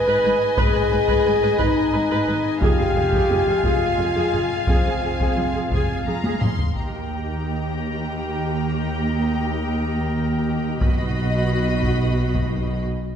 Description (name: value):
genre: cinematic, epic orchestral film score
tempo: 59 BPM (dotted quarters)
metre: 6/8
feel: straight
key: unclear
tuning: A4 = 440 Hz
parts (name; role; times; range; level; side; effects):
- rich symphonic violin section; melody; 0.0-12.8 s; Ab5 to C6; -33 LUFS; left 2 dB; none
- rich symphonic violin section; second line; 0.0-12.8 s; Eb5 to G5; -30 LUFS; left 2 dB; none
- mellow French horn section; sustained chords; 0.0-12.6 s; D#3 to Cb5; -22 LUFS; left 2 dB; none
- warm woodwind section; sustained chords; 0.0-12.9 s; Ab3 to F5; -31 LUFS; right 1 dB; none
- warm symphonic viola section; accompaniment; 0.1-12.8 s; F#4 to Cb5; -29 LUFS; equal; none
- rich symphonic cello section; bass; 0.1-12.8 s; Eb2 to B2; -26 LUFS; right 1 dB; none
- rich symphonic double bass section; bass; 0.2-12.8 s; F1 to Eb2; -27 LUFS; right 2 dB; none
- solo taiko drums; drums; 0.6-12.8 s; none; -24 LUFS; equal; none
room: wet scoring stage reverb, RT60 1.6 s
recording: heard from further back in the room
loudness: -19 LUFS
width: side -8 dB against mid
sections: 0.0-6.8 A section; 6.8-13.2 B section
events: drum fill 6.2-6.8; break 12.9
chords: 0.0 Abm; 2.6 Fm; 6.8 Eb; 10.8 B